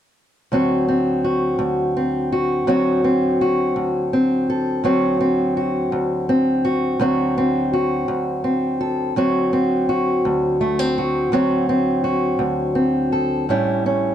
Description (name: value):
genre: acoustic country blues, solo or duo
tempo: 56 BPM (dotted quarters)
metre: 12/8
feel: straight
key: D mixolydian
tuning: A4 = 438 Hz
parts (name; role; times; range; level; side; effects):
- fingerpicked old ladder-braced acoustic guitar; solo; 0.5-14.1 s; D2 to A4; -17 LUFS; equal; none
room: moderate booth ambience, RT60 0.2 s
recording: dark, warm production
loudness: -17 LUFS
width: side -10 dB against mid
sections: 0.5-14.1 A section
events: none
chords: 0.5 D7; 13.5 A7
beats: | 0.53 1.61 2.69 3.77 | 4.85 5.93 7.01 8.10 | 9.18 10.26 11.34 12.42 | 13.50